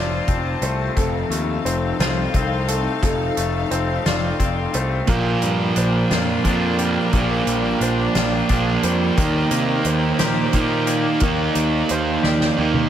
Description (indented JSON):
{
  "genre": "post-rock",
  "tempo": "59 BPM (dotted quarters)",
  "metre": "6/8",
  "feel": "straight",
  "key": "unclear",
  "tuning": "A4 = 440 Hz",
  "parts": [
    { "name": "clear studio string section", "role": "sustained chords", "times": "0.0-12.9 s", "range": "D4 to A5", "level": "-28 LUFS", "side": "left 3 dB", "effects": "none" },
    { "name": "felt-muted upright piano", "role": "arpeggios", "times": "0.0-12.9 s", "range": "A4 to D5", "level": "-29 LUFS", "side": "right 2 dB", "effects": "analog delay" },
    { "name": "twangy electric guitar", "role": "arpeggios", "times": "0.0-12.9 s", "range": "F2 to G4", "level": "-26 LUFS", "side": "left 6 dB", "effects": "analog delay" },
    { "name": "fuzz picked electric bass", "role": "bass", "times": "0.0-12.8 s", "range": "F1 to C3", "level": "-24 LUFS", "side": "equal", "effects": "overdrive" },
    { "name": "soft-mallet drum kit", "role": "drums", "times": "0.3-12.9 s", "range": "hi-hat, kick drum, snare drum, toms", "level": "-24 LUFS", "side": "equal", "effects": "none" },
    { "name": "sludgy distorted guitar", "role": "riff", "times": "5.1-12.9 s", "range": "Bb2 to Eb4", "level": "-20 LUFS", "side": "right 5 dB", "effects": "overdrive" }
  ],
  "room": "moderate lush hall reverb, RT60 2.7 s",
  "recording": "big arena sound",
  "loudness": "-17 LUFS",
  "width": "side -10 dB against mid",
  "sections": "0.0-12.9 A section",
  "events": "drum fill 12.2-12.9",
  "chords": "0.0 F7; 5.1 Bb6; 9.2 Ebmaj7",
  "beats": "| 0.98 2.01 | 3.03 4.06 | 5.09 6.11 | 7.14 8.16 | 9.18 10.21 | 11.23 12.25"
}